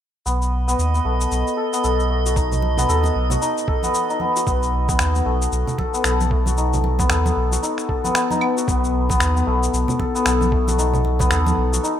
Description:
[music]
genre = organic downtempo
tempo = 114 BPM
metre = 4/4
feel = swing 60% on 16ths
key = B mixolydian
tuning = A4 = 440 Hz
[part]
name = santur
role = arpeggios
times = 0.3-12.0 s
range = A3 to A4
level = -21 LUFS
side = left 2 dB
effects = low-pass filter, digital delay
[part]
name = warm sub bass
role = bass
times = 0.3-11.8 s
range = B1 to D#2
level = -20 LUFS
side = right 1 dB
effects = none
[part]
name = electronic shaker, finger snaps and claves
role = drums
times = 0.3-12.0 s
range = none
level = -25 LUFS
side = left 1 dB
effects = none
[part]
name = drifting glass-harmonics texture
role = texture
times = 0.7-4.5 s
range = D#5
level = -29 LUFS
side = right 8 dB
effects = chorus, built-in reverb
[part]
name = electronic kick drum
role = drums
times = 2.4-11.3 s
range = none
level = -23 LUFS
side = right 1 dB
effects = none
[part]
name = congas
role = percussion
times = 2.5-11.8 s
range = none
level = -29 LUFS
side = right 5 dB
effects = none
[sound]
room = light reverb, digital ambience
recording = rough home demo mix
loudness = -17 LUFS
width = side -10 dB against mid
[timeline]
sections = 0.3-4.5 A section; 4.5-12.0 B section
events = filter sweep on santur 4.5-12.0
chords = 0.3 B

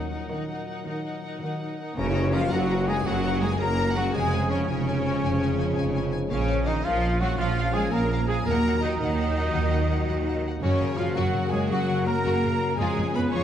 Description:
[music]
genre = cinematic, heroic adventure film score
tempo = 111 BPM (dotted quarters)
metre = 12/8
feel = straight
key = F# major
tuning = A4 = 440 Hz
[part]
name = warm symphonic violin section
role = melody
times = 0.0-13.4 s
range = E#4 to A#5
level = -38 LUFS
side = left 5 dB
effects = none
[part]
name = warm symphonic violin section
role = second line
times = 0.0-13.4 s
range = A#4 to C#6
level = -35 LUFS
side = left 2 dB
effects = none
[part]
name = rich symphonic viola section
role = accompaniment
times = 0.0-13.4 s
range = C#4 to C#5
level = -33 LUFS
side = equal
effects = none
[part]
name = warm trombone section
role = sustained chords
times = 0.0-13.4 s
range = A#2 to G#3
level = -36 LUFS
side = right 2 dB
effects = none
[part]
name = concert harp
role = arpeggios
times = 0.0-13.4 s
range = E#2 to F#5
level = -32 LUFS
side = left 7 dB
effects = none
[part]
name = rich symphonic cello section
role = bass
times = 0.0-13.4 s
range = C#3 to C#4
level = -30 LUFS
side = right 2 dB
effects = none
[part]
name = rich symphonic double bass section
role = bass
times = 0.0-13.4 s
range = E#1 to F#2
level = -28 LUFS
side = right 2 dB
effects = none
[part]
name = mellow French horn section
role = sustained chords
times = 1.9-13.4 s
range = G#3 to F#4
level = -34 LUFS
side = left 3 dB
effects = none
[part]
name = mellow hollow flute section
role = second line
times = 2.0-13.4 s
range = C#5 to C#6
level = -36 LUFS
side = left 2 dB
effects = none
[part]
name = mellow trumpet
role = stabs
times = 2.0-13.4 s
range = C#4 to C#5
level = -32 LUFS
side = right 2 dB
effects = none
[part]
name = tam-tam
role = percussion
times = 2.0-3.4 s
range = none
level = -34 LUFS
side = left 1 dB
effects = none
[sound]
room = wet scoring stage reverb, RT60 2.1 s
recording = dark, warm production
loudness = -23 LUFS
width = side -10 dB against mid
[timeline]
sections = 0.0-2.0 A section; 2.0-13.4 B section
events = band accent 2.0-2.3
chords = 0.0 D#m; 2.0 F#; 4.1 C#/E#; 6.3 A#m; 8.5 D#m; 10.6 F#; 12.8 C#/E#

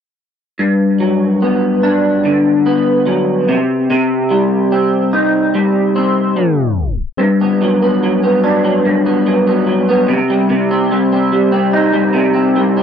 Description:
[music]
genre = indie pop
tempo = 73 BPM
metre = 4/4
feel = straight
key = G major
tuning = A4 = 440 Hz
[part]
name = electric guitar through a small old amp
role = solo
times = 0.6-12.8 s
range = G2 to Eb4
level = -11 LUFS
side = equal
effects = analog chorus, warbly pitch drift, analog delay
[sound]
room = moderate booth ambience, RT60 0.3 s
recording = dry, gritty hardware recording, transformer saturation, tape stop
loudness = -11 LUFS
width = side -8 dB against mid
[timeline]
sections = 0.6-7.2 A section; 7.2-12.8 B section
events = tape stop 6.4-7.2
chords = 0.6 Gmaj7; 3.5 Cm

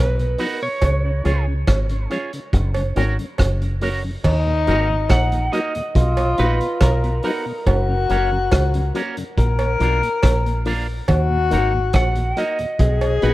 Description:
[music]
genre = roots reggae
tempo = 70 BPM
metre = 4/4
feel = straight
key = Eb minor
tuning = A4 = 440 Hz
[part]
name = lightly driven lead guitar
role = melody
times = 0.0-13.3 s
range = Bb4 to Gb5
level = -26 LUFS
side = right 2 dB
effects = dub echo
[part]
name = deep dub fingered electric bass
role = bass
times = 0.0-13.3 s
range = Gb1 to Eb2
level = -19 LUFS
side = equal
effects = none
[part]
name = mellow tonewheel organ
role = accompaniment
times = 0.2-13.3 s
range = Eb2 to D#4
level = -28 LUFS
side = left 2 dB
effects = chorus vibrato, slow rotary speaker
[part]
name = crunchy breakbeat drum kit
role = drums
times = 0.2-13.3 s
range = crash cymbal, hi-hat, kick drum, rim click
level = -22 LUFS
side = equal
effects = none
[part]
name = electric guitar with an envelope filter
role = accompaniment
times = 0.4-13.3 s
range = Bb3 to Db5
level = -30 LUFS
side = right 4 dB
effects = dub echo
[part]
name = cowbell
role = percussion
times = 0.8-13.2 s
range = none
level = -27 LUFS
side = right 4 dB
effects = none
[part]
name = warm tenor saxophone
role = second line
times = 4.2-13.3 s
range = Eb4 to Bb4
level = -23 LUFS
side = left 4 dB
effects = dub echo
[sound]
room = small room ambience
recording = rough home demo mix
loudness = -17 LUFS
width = side -17 dB against mid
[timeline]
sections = 0.0-4.2 A section; 4.2-13.3 B section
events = none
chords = 0.0 B; 0.8 Db; 2.5 Gb; 4.2 Ebm; 6.0 B; 7.7 Gb; 9.4 Bb; 11.1 Ebm; 12.8 B

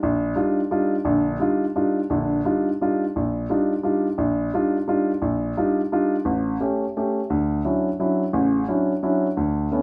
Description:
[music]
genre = jazz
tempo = 173 BPM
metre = 3/4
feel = swing 62% on 8ths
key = Eb lydian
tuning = A4 = 440 Hz
[part]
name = dark grand piano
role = solo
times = 0.0-9.8 s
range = A1 to G4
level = -22 LUFS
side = equal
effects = none
[sound]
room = light reverb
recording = band playing live in one room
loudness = -23 LUFS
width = mono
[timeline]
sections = 0.0-7.3 A section; 7.3-9.8 B section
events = none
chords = 0.0 Ebmaj9; 6.3 A7; 7.3 Dmaj9

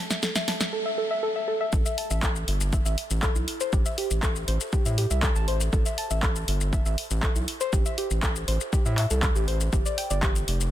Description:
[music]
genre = melodic techno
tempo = 120 BPM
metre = 4/4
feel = straight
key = A minor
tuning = A4 = 440 Hz
[part]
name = soft round pluck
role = arpeggios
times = 0.0-10.3 s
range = E4 to A5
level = -30 LUFS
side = left 1 dB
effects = chorus, sidechain pumping, ping-pong delay
[part]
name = punchy analog drum machine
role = drums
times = 0.1-10.7 s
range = handclaps, hi-hat, shaker, snare drum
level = -30 LUFS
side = left 1 dB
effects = none
[part]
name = round analog bass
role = bass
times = 1.7-10.7 s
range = F1 to A2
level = -26 LUFS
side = equal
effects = sidechain pumping
[part]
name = electronic kick drum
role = drums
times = 1.7-10.3 s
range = none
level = -26 LUFS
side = equal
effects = none
[sound]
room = little or no reverb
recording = dense, heavily limited modern master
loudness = -23 LUFS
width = side -12 dB against mid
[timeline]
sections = 0.0-1.7 A section; 1.7-10.7 B section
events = build-up 0.0-1.7; drum fill 0.0-0.7; filter sweep on synth arpeggio sound 0.0-1.7; drop 1.7-10.7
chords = 0.0 A5; 1.7 Am; 9.7 G5

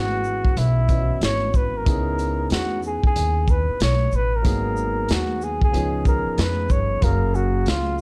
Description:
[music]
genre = hip hop, jazz-hop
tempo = 93 BPM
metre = 4/4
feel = swing 64% on 16ths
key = C# dorian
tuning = A4 = 440 Hz
[part]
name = mellow flugelhorn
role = melody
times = 0.0-8.0 s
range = E4 to C#5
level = -27 LUFS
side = equal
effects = slapback echo
[part]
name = dark baby grand piano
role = accompaniment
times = 0.0-8.0 s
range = E3 to E#5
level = -32 LUFS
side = equal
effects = none
[part]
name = upright bass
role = bass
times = 0.0-8.0 s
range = F#1 to E#2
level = -26 LUFS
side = equal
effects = none
[part]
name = crunchy breakbeat drum kit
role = drums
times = 0.2-8.0 s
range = hi-hat, kick drum, shaker, snare drum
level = -25 LUFS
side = equal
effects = none
[sound]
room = small room ambience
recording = dark, warm production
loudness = -21 LUFS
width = mono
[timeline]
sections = 0.0-1.9 A section; 1.9-8.0 A section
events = none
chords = 0.0 C#m9; 4.4 G#m7; 5.7 C#7; 7.0 F#maj9

